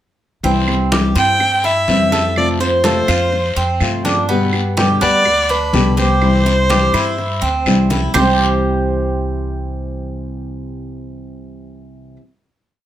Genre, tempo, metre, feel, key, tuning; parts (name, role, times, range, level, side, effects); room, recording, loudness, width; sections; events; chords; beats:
latin, Cuban son and guajira; 125 BPM; 4/4; straight; C major; A4 = 440 Hz
nylon-string guitar; accompaniment; 0.4-12.2 s; B2 to G4; -19 LUFS; left 2 dB
Cuban tres; arpeggios; 0.4-12.2 s; B3 to C5; -19 LUFS; right 2 dB
upright bass; bass; 0.4-12.2 s; C2 to G2; -21 LUFS; equal
congas; percussion; 0.4-8.3 s; -24 LUFS; equal
guiro; percussion; 0.4-8.3 s; -26 LUFS; left 5 dB
claves; percussion; 0.7-8.3 s; -27 LUFS; right 5 dB
warm violin; melody; 1.2-7.6 s; B4 to G5; -17 LUFS; equal; slapback echo
moderate studio reverb, RT60 0.6 s; -13 LUFS; side -12 dB against mid
0.4-8.1 A section; 8.1-12.0 final chord
0.4 C; 2.4 F; 4.3 G; 6.2 C
| 0.44 0.92 1.40 1.88 | 2.36 2.85 3.33 3.81 | 4.29 4.77 5.25 5.74 | 6.22 6.70 7.18 7.67 | 8.15 8.63 9.11 9.59 | 10.07 10.55 11.03 11.51